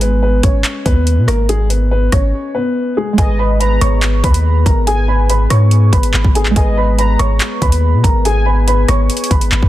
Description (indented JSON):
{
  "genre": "hip hop, drill",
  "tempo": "142 BPM",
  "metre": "4/4",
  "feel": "half-time",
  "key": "G# minor",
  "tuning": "A4 = 440 Hz",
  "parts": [
    { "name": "dark baby grand piano", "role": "melody", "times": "0.0-9.7 s", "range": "G#3 to C#6", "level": "-18 LUFS", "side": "equal", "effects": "low-pass filter, tape echo" },
    { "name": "felt-muted upright piano", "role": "accompaniment", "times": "0.0-9.7 s", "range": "G#3 to B4", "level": "-22 LUFS", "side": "right 6 dB", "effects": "low-pass filter" },
    { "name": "long sustained 808-style bass", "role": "bass", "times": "0.0-9.7 s", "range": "G#1 to B2", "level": "-13 LUFS", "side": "equal", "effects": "none" },
    { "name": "drill drum kit", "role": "drums", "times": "0.0-9.7 s", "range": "handclaps, hi-hat, kick drum, rim click", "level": "-15 LUFS", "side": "equal", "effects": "none" },
    { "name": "warm velvety synth lead", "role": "second line", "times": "3.2-8.6 s", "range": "D#5 to A#5", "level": "-25 LUFS", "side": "left 3 dB", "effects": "chorus, tape echo" },
    { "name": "glass harmonica", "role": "sustained chords", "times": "3.2-9.7 s", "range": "B3 to B4", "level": "-23 LUFS", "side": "left 6 dB", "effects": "none" }
  ],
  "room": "small room ambience",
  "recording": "dense, heavily limited modern master",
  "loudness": "-11 LUFS",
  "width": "side -14 dB against mid",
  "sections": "0.0-3.2 A section; 3.2-9.7 B section",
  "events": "break 2.3-3.2",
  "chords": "0.0 G#m; 3.2 G#madd9"
}